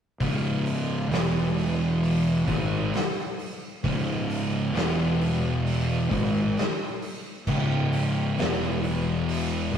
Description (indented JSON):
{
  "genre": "stoner and doom metal",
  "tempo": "66 BPM",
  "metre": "4/4",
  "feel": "straight",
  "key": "C# minor",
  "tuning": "A4 = 440 Hz",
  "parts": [
    { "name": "thick fuzz guitar", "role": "riff", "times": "0.2-9.8 s", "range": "C#2 to G#3", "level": "-26 LUFS", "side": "equal", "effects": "distortion" },
    { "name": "fuzz fingered electric bass", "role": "bass", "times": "0.2-9.8 s", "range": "C#1 to G#1", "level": "-28 LUFS", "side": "equal", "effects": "overdrive, tube saturation" },
    { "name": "oversized low-tuned drum kit", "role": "drums", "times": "0.2-9.8 s", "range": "crash cymbal, hi-hat, kick drum, snare drum", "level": "-30 LUFS", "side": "equal", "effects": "none" }
  ],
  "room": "moderate booth ambience, RT60 0.2 s",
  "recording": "rough rehearsal-room recording, tube saturation",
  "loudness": "-23 LUFS",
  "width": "side -8 dB against mid",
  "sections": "0.2-9.8 A section",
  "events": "none",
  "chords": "0.2 C#5; 1.1 E5; 2.5 C#5; 4.7 E5; 6.1 C#5; 8.4 E5"
}